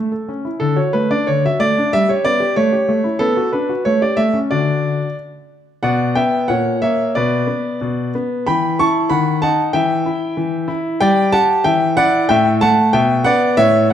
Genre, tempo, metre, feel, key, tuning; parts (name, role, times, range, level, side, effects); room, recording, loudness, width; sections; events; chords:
classical-period piano sonatina; 93 BPM; 2/4; rubato; D major, B minor from 5.9 s; A4 = 440 Hz
clear grand piano; solo; 0.0-13.9 s; A2 to C#6; -14 LUFS; equal
wet recital hall reverb, RT60 1.5 s; dark, warm production; -14 LUFS; side -10 dB against mid
0.0-5.9 A section; 5.9-13.9 B section
0.0 A; 0.6 D; 1.9 G; 2.6 A7; 3.2 Bm; 3.9 A7; 4.5 D; 5.9 Bm; 6.5 F#7/A#; 7.2 N.C.; 8.4 Em; 9.1 B7/D#; 9.7 N.C.; 11.0 G5; 11.6 Em; 12.3 A5; 12.9 Bm